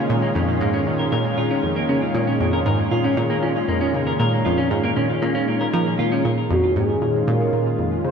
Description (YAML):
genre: ambient, sequencer-driven space music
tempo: 117 BPM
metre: 4/4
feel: straight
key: Bb minor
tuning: A4 = 439 Hz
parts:
  - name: lush unison pad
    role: sustained chords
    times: 0.0-8.1 s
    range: Bb2 to F4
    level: -22 LUFS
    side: equal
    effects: chorus
  - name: semi-hollow electric guitar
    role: arpeggios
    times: 0.0-6.2 s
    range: Bb3 to Bb4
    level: -25 LUFS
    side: equal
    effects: auto-pan, tape echo
  - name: analog pluck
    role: riff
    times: 0.0-8.1 s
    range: F2 to F3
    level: -23 LUFS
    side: right 1 dB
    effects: chorus, tape echo
  - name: expressive synth lead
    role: melody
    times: 6.5-8.1 s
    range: Gb4 to C5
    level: -22 LUFS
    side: equal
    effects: analog chorus, tape echo
room: wet lush hall reverb, RT60 2.7 s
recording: dreamy mix soaked in reverb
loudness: -18 LUFS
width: side -6 dB against mid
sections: 0.0-6.2 A section; 6.2-8.1 A section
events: none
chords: 0.0 Bbm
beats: | 0.10 0.61 1.12 1.63 | 2.15 2.66 3.17 3.69 | 4.20 4.71 5.22 5.74 | 6.25 6.76 7.28 7.79